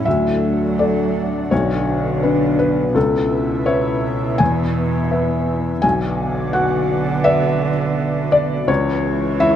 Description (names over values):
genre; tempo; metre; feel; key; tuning
neoclassical piano and strings; 84 BPM; 4/4; rubato; B dorian; A4 = 440 Hz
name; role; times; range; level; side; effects
rich cello; second line; 0.0-9.6 s; B2 to F#3; -23 LUFS; right 7 dB; none
felt-muted upright piano; accompaniment; 0.0-9.6 s; B1 to G#5; -17 LUFS; left 2 dB; none
lush unison pad; sustained chords; 0.0-9.6 s; G#3 to E5; -25 LUFS; equal; chorus
room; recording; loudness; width
light reverb; none; -16 LUFS; side -10 dB against mid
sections
0.1-9.6 A section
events
none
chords
0.1 D; 1.5 Bm; 3.0 Aadd9/C#; 4.4 E; 5.8 Bm; 8.7 C#m